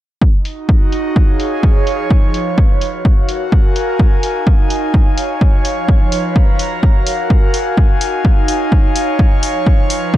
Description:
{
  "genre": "piano house",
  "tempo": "127 BPM",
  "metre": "4/4",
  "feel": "swing 56% on 16ths",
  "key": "Eb minor",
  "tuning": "A4 = 440 Hz",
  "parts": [
    { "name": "electronic kick drum", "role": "drums", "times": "0.2-10.2 s", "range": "none", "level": "-11 LUFS", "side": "equal", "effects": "none" },
    { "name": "airy breathy pad", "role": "texture", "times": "0.5-10.2 s", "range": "F3 to Bb5", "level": "-18 LUFS", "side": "equal", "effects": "chorus, sidechain pumping" },
    { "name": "electronic hi-hat", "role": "drums", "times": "0.5-10.0 s", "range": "none", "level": "-24 LUFS", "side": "left 2 dB", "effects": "low-pass filter on hats" }
  ],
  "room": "digital ambience",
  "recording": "dark, warm production",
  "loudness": "-11 LUFS",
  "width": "side -14 dB against mid",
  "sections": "0.2-10.2 A section",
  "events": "none",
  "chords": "0.2 Ebm11; 1.9 Db9/F; 2.8 Ebm11; 5.6 Db13/F; 6.6 Ebm11; 9.4 Db13/F"
}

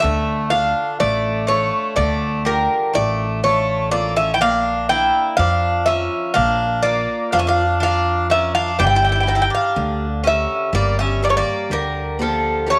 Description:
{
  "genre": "greek folk, Greek bouzouki band",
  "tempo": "123 BPM (eighths)",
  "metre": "9/8",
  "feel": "straight",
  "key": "D harmonic minor",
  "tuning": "A4 = 440 Hz",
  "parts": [
    { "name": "Greek bouzouki", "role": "melody", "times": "0.0-12.8 s", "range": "A4 to G5", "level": "-21 LUFS", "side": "equal", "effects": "none" },
    { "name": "Greek bouzouki", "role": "second line", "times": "0.0-12.8 s", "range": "F3 to E4", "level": "-26 LUFS", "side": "equal", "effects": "none" },
    { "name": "picked swing-style acoustic guitar", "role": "accompaniment", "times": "0.0-12.8 s", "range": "D3 to D5", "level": "-29 LUFS", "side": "equal", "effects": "none" },
    { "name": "upright bass", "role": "bass", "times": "0.0-12.8 s", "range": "G1 to F2", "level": "-25 LUFS", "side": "equal", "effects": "none" }
  ],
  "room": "light reverb, small room reverb",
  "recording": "none",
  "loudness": "-18 LUFS",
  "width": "mono",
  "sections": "0.0-12.8 A section",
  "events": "none",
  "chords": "0.0 Dm; 4.4 Bb; 8.8 Gm"
}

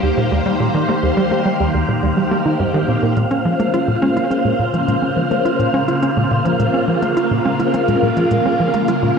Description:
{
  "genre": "ambient, sequencer-driven space music",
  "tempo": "105 BPM",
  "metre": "4/4",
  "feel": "straight",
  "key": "unclear",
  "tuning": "A4 = 440 Hz",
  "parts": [
    { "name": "phased string machine", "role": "sustained chords", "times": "0.0-9.2 s", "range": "Db3 to C5", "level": "-18 LUFS", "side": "left 1 dB", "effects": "ensemble chorus, phaser, cassette tape" },
    { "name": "soft round pluck", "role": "arpeggios", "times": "0.0-9.2 s", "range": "G3 to Eb4", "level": "-23 LUFS", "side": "right 4 dB", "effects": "chorus, auto-pan, cassette tape, tape echo" },
    { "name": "tight sequencer bass", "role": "riff", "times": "0.0-9.1 s", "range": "Eb2 to F4", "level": "-19 LUFS", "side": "left 1 dB", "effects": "cassette tape, tape echo" },
    { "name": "wind-like tuned noise texture", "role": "texture", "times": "0.0-9.2 s", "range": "F5", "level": "-24 LUFS", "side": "right 5 dB", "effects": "built-in reverb, cassette tape" },
    { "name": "electronic hi-hat and percussion blips", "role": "percussion", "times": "3.2-9.0 s", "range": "none", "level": "-47 LUFS", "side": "left 1 dB", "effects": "tape echo" }
  ],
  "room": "wet studio reverb, RT60 0.5 s",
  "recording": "home recording on cassette",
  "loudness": "-14 LUFS",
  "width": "side -6 dB against mid",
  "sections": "0.0-3.2 A section; 3.2-9.2 B section",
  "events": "fade-in on drum 3.2-9.2",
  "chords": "0.0 Eb; 3.2 Bbmadd9"
}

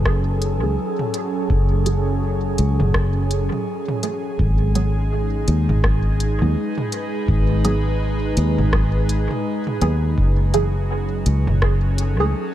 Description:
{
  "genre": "ambient dub",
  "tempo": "83 BPM",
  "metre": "4/4",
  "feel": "swing 60% on 16ths",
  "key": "F# dorian",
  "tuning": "A4 = 439 Hz",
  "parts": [
    { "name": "airy breathy pad", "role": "sustained chords", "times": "0.0-12.5 s", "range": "F#3 to B4", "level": "-24 LUFS", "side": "right 1 dB", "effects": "chorus, vintage 12-bit sampler grit" },
    { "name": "fingered electric bass", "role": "bass", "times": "0.0-12.3 s", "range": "F#1 to D#2", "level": "-19 LUFS", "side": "equal", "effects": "none" },
    { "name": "electronic kick drum", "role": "drums", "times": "0.1-11.8 s", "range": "none", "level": "-23 LUFS", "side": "equal", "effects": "none" },
    { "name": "organic electronic drum kit", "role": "drums", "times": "0.1-12.2 s", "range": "hi-hat, rim click, toms", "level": "-27 LUFS", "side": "equal", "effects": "overdrive, dub echo" },
    { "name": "filtered dub chord stab", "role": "stabs", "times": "0.6-12.3 s", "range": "E3 to G#4", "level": "-26 LUFS", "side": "right 3 dB", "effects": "phaser, analog chorus, vintage 12-bit sampler grit, dub echo" }
  ],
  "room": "light reverb",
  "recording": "dark, warm production",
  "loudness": "-18 LUFS",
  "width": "side -12 dB against mid",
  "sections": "0.0-12.5 A section",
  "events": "none",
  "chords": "0.0 F#madd9; 4.4 G#m; 10.2 F#m9"
}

